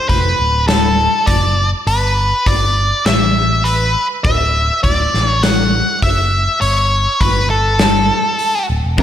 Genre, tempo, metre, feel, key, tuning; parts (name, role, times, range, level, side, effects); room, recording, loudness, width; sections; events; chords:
quiet-loud alternative rock; 101 BPM; 4/4; straight; D major; A4 = 440 Hz
octave-fuzz lead guitar; melody; 0.0-9.0 s; A4 to F#5; -15 LUFS; equal; distortion, slapback echo
picked electric bass; bass; 0.1-9.0 s; D1 to A1; -17 LUFS; equal
big rock drum kit; drums; 0.1-9.0 s; hi-hat, kick drum, snare drum; -18 LUFS; left 1 dB
electric guitar through a small old amp; arpeggios; 9.0 s; F2; -16 LUFS; right 3 dB; phaser
raw garage guitar; riff; 9.0 s; F2 to C3; -29 LUFS; left 15 dB
moderate lush hall reverb, RT60 1.9 s, studio ambience; big arena sound; -12 LUFS; side -10 dB against mid
0.0-9.0 A section
half time 0.0-9.0
0.4 D; 1.9 G; 3.1 A5; 4.2 Dadd9; 6.6 Gsus2